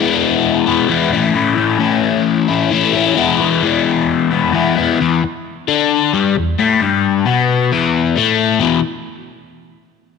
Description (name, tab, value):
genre	rock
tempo	132 BPM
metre	4/4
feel	straight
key	E major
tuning	A4 = 441 Hz
part	crunchy overdriven guitar	solo	0.0-8.8 s	E2 to E4	-13 LUFS	left 7 dB	phaser
room	moderate echo chamber reverb, RT60 2.1 s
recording	none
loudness	-12 LUFS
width	side -5 dB against mid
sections	0.0-5.0 A section; 5.0-8.6 B section; 8.6-10.2 C section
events	none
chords	0.0 E; 1.1 A; 3.2 E; 5.0 E5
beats	0.45 0.90 | 1.35 1.81 2.26 2.71 | 3.17 3.62 4.07 4.53 | 4.98 5.43 5.89 6.34 | 6.79 7.25 7.70 8.16 | 8.61